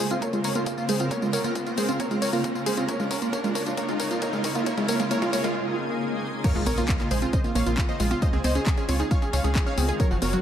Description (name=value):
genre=uplifting trance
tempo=135 BPM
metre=4/4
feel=straight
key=Bb minor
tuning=A4 = 439 Hz
part: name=supersaw stab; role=melody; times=0.0-10.4 s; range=F4 to F5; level=-29 LUFS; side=right 1 dB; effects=vintage 12-bit sampler grit, sidechain pumping, low-pass filter, tape echo
part: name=shimmering ambient pad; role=sustained chords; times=0.0-10.4 s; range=Db3 to Bb4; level=-33 LUFS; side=left 1 dB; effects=chorus, built-in reverb, sidechain pumping
part: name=wide unison pluck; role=arpeggios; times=0.0-10.4 s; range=F3 to Db5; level=-29 LUFS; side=right 2 dB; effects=sidechain pumping, tape echo
part: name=house drum kit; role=drums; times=0.0-10.4 s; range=congas, crash cymbal, handclaps, hi-hat, tambourine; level=-32 LUFS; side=left 2 dB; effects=overdrive, sidechain pumping on hats, high-pass filter on hats, sidechain pumping on perc, high-pass filter on perc, sidechain pumping on cymbals, high-pass filter on cymbals, high-pass filter on snare
part: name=riser, swell and impact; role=sound effects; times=0.1-8.2 s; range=none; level=-32 LUFS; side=equal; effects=none
part: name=electronic kick drum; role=drums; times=0.2-10.1 s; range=none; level=-25 LUFS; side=equal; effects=overdrive, high-pass filter on kick
part: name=tight sequencer bass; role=bass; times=6.6-10.4 s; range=Gb1 to Db2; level=-26 LUFS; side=equal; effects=sidechain pumping
room=moderate recital hall reverb, RT60 1.4 s, digital ambience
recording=none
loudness=-22 LUFS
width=side -10 dB against mid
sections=0.0-6.4 A section; 6.4-10.4 B section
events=build-up 0.0-6.4; drum fill 0.0-5.6; filter sweep on supersaw synth 0.0-6.4; filter sweep on synth arpeggio sound 0.0-6.4; riser 0.1-5.6; break 5.6-6.4; swell 5.6-6.4; drop 6.4-10.4; impact 6.4-8.2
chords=0.0 Bbmadd9; 1.1 Gb; 2.9 Bbmadd9; 4.7 Absus4; 6.4 Bbmadd9; 8.2 Dbadd9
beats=0.22 0.66 | 1.11 1.55 2.00 2.44 | 2.89 3.33 3.77 4.22 | 4.66 5.11 5.55 6.00 | 6.44 6.89 7.33 7.78 | 8.22 8.66 9.11 9.55 | 10.00